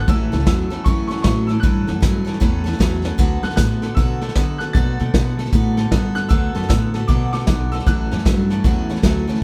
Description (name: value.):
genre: rockabilly.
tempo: 154 BPM.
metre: 4/4.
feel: swing 63% on 8ths.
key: A mixolydian.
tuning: A4 = 441 Hz.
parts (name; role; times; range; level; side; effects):
clear upright piano; melody; 0.0-8.6 s; C#6 to A6; -32 LUFS; equal; none.
picked steel-string acoustic guitar; accompaniment; 0.0-9.4 s; A2 to A4; -29 LUFS; equal; none.
electric guitar through a small old amp; riff; 0.0-9.4 s; A2 to B3; -30 LUFS; equal; none.
upright bass; bass; 0.1-9.4 s; A1 to D3; -24 LUFS; equal; none.
vintage brush drum kit; drums; 0.1-9.4 s; hi-hat, kick drum, snare drum, splash cymbal; -21 LUFS; equal; none.
room: moderate studio reverb, RT60 0.7 s.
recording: band playing live in one room.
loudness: -18 LUFS.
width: mono.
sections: 0.0-9.4 A section.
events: drum fill 3.0.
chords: 0.1 A6; 3.2 D6; 7.9 A6.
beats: | 0.08 0.47 0.86 1.25 | 1.64 2.03 2.42 2.81 | 3.19 3.58 3.98 4.37 | 4.75 5.14 5.53 5.92 | 6.31 6.70 7.09 7.48 | 7.87 8.26 8.65 9.04 | 9.42.